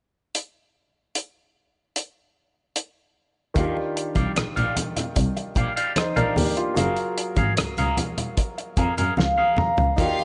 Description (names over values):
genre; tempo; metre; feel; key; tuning
lush 1970s-style soul; 75 BPM; 4/4; straight; Eb major; A4 = 440 Hz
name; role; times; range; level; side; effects
cloth-damped thuddy drum kit; drums; 0.3-10.2 s; hi-hat, kick drum, rim click, snare drum, toms; -28 LUFS; equal; none
warm baby grand piano; accompaniment; 3.5-10.2 s; Eb3 to Bb5; -31 LUFS; equal; none
electric guitar through a small old amp; riff; 3.6-10.2 s; G4 to F5; -31 LUFS; equal; wah
muted double bass; bass; 3.6-10.1 s; Gb1 to Gb2; -28 LUFS; equal; none
congas; percussion; 3.6-10.2 s; none; -33 LUFS; equal; none
vibraphone with soft mallets; melody; 9.2-10.2 s; F5 to G5; -24 LUFS; equal; none
warm chamber string section; second line; 10.0-10.2 s; F4 to F5; -29 LUFS; equal; none
room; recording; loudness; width
light reverb, studio ambience; nothing above 10.6 kHz; -24 LUFS; mono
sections
0.3-3.6 A section; 3.6-10.0 B section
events
grand piano fill 8.8-10.0; drum fill 9.2-10.0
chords
0.3 N.C.; 3.6 Ebmaj9; 6.8 Gbmaj9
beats
| 0.35 1.15 1.95 2.76 | 3.56 4.36 5.17 5.97 | 6.77 7.57 8.38 9.18 | 9.98